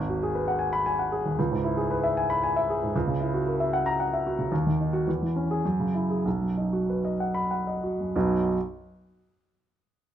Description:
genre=classical, romantic character piece for solo piano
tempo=90-118 BPM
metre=3/4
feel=rubato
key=B major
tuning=A4 = 440 Hz
part: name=warm grand piano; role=solo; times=0.0-8.6 s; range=G#1 to B5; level=-24 LUFS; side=equal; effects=none
room=light reverb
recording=dark, warm production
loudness=-24 LUFS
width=side -10 dB against mid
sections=0.0-8.1 A section; 8.1-9.9 B section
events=none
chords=0.0 G#m7; 1.4 C#m7; 2.9 F#7/C#; 4.5 D#m; 5.1 C#m/E; 5.6 F#sus2; 6.2 B

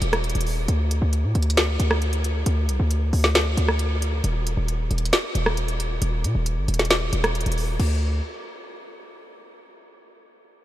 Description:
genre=hip hop, trap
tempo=135 BPM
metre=4/4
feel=half-time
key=unclear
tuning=A4 = 443 Hz
part: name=hard-hitting 808-style bass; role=bass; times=0.0-8.2 s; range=Eb1 to Bb2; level=-22 LUFS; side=equal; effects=none
part: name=trap drum kit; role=drums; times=0.0-7.9 s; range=crash cymbal, hi-hat, rim click, snare drum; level=-25 LUFS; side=equal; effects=none
room=light reverb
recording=none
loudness=-20 LUFS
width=side -14 dB against mid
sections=0.0-7.8 A section; 7.8-9.6 B section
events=none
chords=none

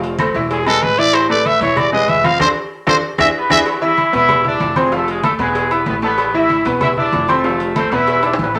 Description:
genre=latin, salsa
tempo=190 BPM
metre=4/4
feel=straight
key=unclear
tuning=A4 = 440 Hz
part: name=bright baby grand piano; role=accompaniment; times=0.0-8.6 s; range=E3 to E6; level=-21 LUFS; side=equal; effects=none
part: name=upright bass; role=bass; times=0.0-8.6 s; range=E1 to F2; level=-29 LUFS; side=equal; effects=none
part: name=agogo bells and timbales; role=percussion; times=0.0-8.6 s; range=none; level=-26 LUFS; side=equal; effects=none
part: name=congas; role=percussion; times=0.0-8.6 s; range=none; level=-28 LUFS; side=equal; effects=none
part: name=claves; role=percussion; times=0.2-3.6 s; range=none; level=-26 LUFS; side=equal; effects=none
part: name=cowbell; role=percussion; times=0.2-8.6 s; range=none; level=-28 LUFS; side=equal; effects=none
part: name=growling trumpet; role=melody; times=0.5-3.6 s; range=G#4 to F5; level=-17 LUFS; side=equal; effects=none
part: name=warm trumpet section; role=melody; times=3.4-8.6 s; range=G#3 to E5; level=-20 LUFS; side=equal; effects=none
room=wet studio reverb, RT60 0.7 s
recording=none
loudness=-15 LUFS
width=mono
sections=0.0-3.7 A section; 3.7-8.6 B section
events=trumpet solo 0.0-3.7; drum fill 2.4-3.7, 8.2-8.6; band accent 2.4-3.7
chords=0.0 F; 0.5 E; 1.1 Asus2; 1.8 E; 2.4 F6; 3.0 E7; 3.7 E5; 4.3 E7; 4.9 F; 5.6 E; 6.8 E5; 7.4 F; 8.1 E5

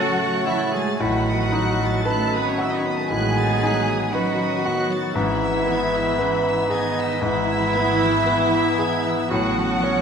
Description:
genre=classical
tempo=58 BPM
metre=4/4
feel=rubato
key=E major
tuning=A4 = 440 Hz
part: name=clear grand piano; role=melody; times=0.0-10.0 s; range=G#2 to B4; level=-25 LUFS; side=left 2 dB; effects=none
part: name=rich chamber violin section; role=melody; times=0.0-10.0 s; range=F#5 to A6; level=-34 LUFS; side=left 5 dB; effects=none
part: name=dark clarinet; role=second line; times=0.0-10.0 s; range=G#3 to C#4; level=-31 LUFS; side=right 2 dB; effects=none
part: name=rich chamber violin section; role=second line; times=0.0-10.0 s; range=D#5 to E6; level=-30 LUFS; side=left 4 dB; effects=none
part: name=silver concert flute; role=second line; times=0.0-10.0 s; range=D#5 to E6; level=-31 LUFS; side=left 2 dB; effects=none
part: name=warm oboe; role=second line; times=0.0-10.0 s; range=A5 to C#6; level=-32 LUFS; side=right 2 dB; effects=none
part: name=mellow bassoon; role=accompaniment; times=0.0-10.0 s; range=F#3 to D#4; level=-31 LUFS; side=right 3 dB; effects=none
part: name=rich chamber viola section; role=accompaniment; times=0.0-10.0 s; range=D#4 to E5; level=-25 LUFS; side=right 3 dB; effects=none
part: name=warm French horn section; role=sustained chords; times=0.0-10.0 s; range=A3 to B4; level=-28 LUFS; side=left 2 dB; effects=none
part: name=warm trombone section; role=sustained chords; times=0.0-10.0 s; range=C#3 to G#3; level=-33 LUFS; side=right 2 dB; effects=none
part: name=warm chamber cello section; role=bass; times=0.0-10.0 s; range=D#3 to E4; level=-31 LUFS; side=right 2 dB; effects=none
part: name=clear chamber double bass section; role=bass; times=1.0-10.0 s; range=G#1 to A1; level=-30 LUFS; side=right 2 dB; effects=none
room=wet scoring stage reverb, RT60 1.8 s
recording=minimal, uncompressed stereo recording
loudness=-19 LUFS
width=side -6 dB against mid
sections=0.0-10.0 A section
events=none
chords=0.0 F#m/A; 1.0 B7/A; 5.1 E/G#; 9.3 F#m/A

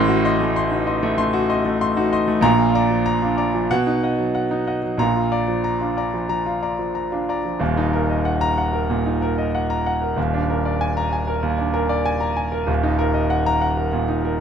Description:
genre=classical, virtuoso piano study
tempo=95 BPM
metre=4/4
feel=rubato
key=Eb minor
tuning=A4 = 440 Hz
part: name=warm concert grand piano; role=solo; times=0.0-14.4 s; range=Eb1 to C6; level=-18 LUFS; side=equal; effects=none
room=little or no reverb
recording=close, detailed microphones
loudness=-18 LUFS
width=side -8 dB against mid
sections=0.0-7.6 A section; 7.6-14.4 B section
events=none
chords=0.0 Adim7; 2.4 Bb; 3.7 B; 5.0 Bb; 7.6 Ebm; 10.2 Bb7/Eb; 12.7 Ebm

